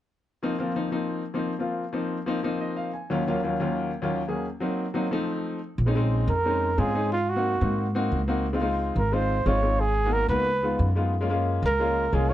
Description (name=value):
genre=Afro-Cuban jazz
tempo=180 BPM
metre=4/4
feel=straight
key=unclear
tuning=A4 = 440 Hz
part: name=clear baby grand piano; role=accompaniment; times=0.4-12.3 s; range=Eb2 to Ab5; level=-27 LUFS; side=left 2 dB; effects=none
part: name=upright bass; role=bass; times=5.8-12.3 s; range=Ab1 to Ab2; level=-25 LUFS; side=equal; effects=none
part: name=dark trumpet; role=melody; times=6.3-12.3 s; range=F4 to Db5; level=-25 LUFS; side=right 2 dB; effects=none
room=light reverb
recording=dark, warm production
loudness=-23 LUFS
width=side -13 dB against mid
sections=0.4-5.8 A section; 5.8-12.3 B section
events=grand piano fill 2.4-3.1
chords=0.4 F7sus4; 3.1 Ebm7; 4.4 Cm7b5; 5.1 F7; 5.8 Bbm11; 7.1 Ab9; 8.5 Dbmaj9; 9.8 Abm7; 10.5 Db7; 11.1 Gbmaj9